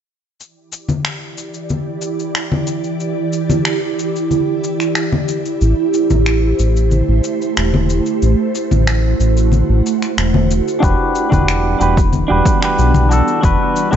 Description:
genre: sunset chillout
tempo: 92 BPM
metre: 4/4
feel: straight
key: E minor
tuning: A4 = 440 Hz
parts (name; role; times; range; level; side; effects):
- ethereal airy pad; sustained chords; 1.4-14.0 s; E3 to D5; -18 LUFS; right 3 dB; ensemble chorus, built-in reverb, phaser
- cabasa and finger snaps; drums; 0.4-14.0 s; none; -24 LUFS; left 1 dB; none
- congas; percussion; 0.9-14.0 s; none; -20 LUFS; left 3 dB; none
- round analog bass; bass; 5.6-14.0 s; E1 to B1; -14 LUFS; equal; none
- clean electric guitar; accompaniment; 10.8-14.0 s; D4 to B4; -16 LUFS; moving between left 3 dB and right 3 dB; auto-pan, low-pass filter, ping-pong delay
- electronic kick drum; drums; 10.8-14.0 s; none; -16 LUFS; equal; overdrive
room: moderate concert hall reverb, RT60 1.9 s, studio reverb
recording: nothing above 7.9 kHz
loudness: -13 LUFS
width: side -9 dB against mid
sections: 0.4-10.8 A section; 10.8-14.0 B section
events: filter sweep on clean electric guitar 10.8-14.0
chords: 0.4 Em7; 5.3 Am7; 10.8 Em7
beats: | 0.40 1.05 1.70 2.35 | 3.00 3.66 4.31 4.96 | 5.61 6.27 6.92 7.57 | 8.22 8.88 9.53 10.18 | 10.83 11.48 12.14 12.79 | 13.44

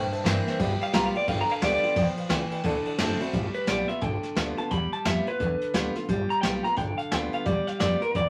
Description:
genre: rockabilly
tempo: 175 BPM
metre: 4/4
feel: swing 62% on 8ths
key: G mixolydian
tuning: A4 = 441 Hz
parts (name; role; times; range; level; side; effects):
- dark upright piano; accompaniment; 0.0-3.3 s; A4 to B5; -36 LUFS; equal; none
- picked steel-string acoustic guitar; accompaniment; 0.0-8.3 s; G2 to F#4; -32 LUFS; equal; none
- upright bass; bass; 0.0-8.3 s; F#1 to G2; -33 LUFS; equal; none
- jazz brush drum kit; drums; 0.1-8.2 s; hi-hat, kick drum, ride cymbal, snare drum; -33 LUFS; equal; none
- electric guitar through a small old amp; melody; 0.8-8.3 s; Bb4 to B5; -30 LUFS; equal; none
room: moderate studio reverb, RT60 0.5 s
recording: vinyl crackle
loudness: -26 LUFS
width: mono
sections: 0.0-3.3 A section; 3.3-8.3 B section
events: clean electric guitar solo 0.0-3.3; upright piano fill 2.8-3.3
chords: 0.0 C7; 0.6 G7; 2.6 D7; 3.3 G7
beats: 0.26 | 0.60 0.94 1.28 1.62 | 1.97 2.31 2.65 2.99 | 3.33 3.68 4.02 4.36 | 4.71 5.05 5.40 5.74 | 6.08 6.43 6.77 7.12 | 7.46 7.80 8.15

